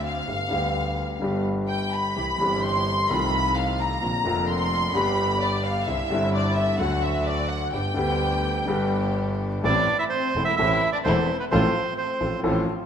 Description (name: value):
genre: tango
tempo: 128 BPM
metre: 4/4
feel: rubato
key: A minor from 9.6 s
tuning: A4 = 440 Hz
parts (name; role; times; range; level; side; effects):
- warm studio violin section; second line; 0.0-12.4 s; B3 to C6; -26 LUFS; left 1 dB; none
- warm concert grand piano; accompaniment; 0.0-12.6 s; E1 to A4; -26 LUFS; left 1 dB; none
- clear double bass; bass; 0.0-12.6 s; E1 to D2; -29 LUFS; right 1 dB; none
- warm chamber string section; stabs; 2.2-12.6 s; A3 to Bb4; -35 LUFS; equal; none
- bandoneon; melody; 9.6-12.4 s; B4 to E5; -24 LUFS; right 4 dB; none
room: moderate concert hall reverb, RT60 1.8 s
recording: minimal, uncompressed stereo recording, vinyl crackle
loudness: -21 LUFS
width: side -8 dB against mid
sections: 0.0-9.6 A section; 9.6-12.9 B section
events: violin section solo 0.0-9.6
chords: 0.3 G; 2.2 C; 3.1 F7/C; 4.0 Bbadd9; 5.0 G; 5.9 Cadd9; 6.8 D; 7.7 G; 9.6 Am; 11.5 F/A